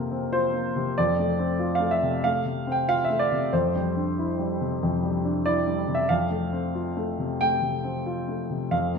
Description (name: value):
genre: neoclassical minimalist piano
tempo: 93 BPM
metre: 4/4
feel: rubato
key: F major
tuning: A4 = 440 Hz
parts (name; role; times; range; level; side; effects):
- warm baby grand piano; solo; 0.0-9.0 s; F2 to G5; -23 LUFS; equal; none
room: wet recital hall reverb, RT60 1.6 s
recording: minimal, uncompressed stereo recording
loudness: -23 LUFS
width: side -5 dB against mid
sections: 0.0-9.0 A section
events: none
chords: 0.0 Bbsus2/F; 1.0 F; 3.5 Cadd9/F; 6.1 F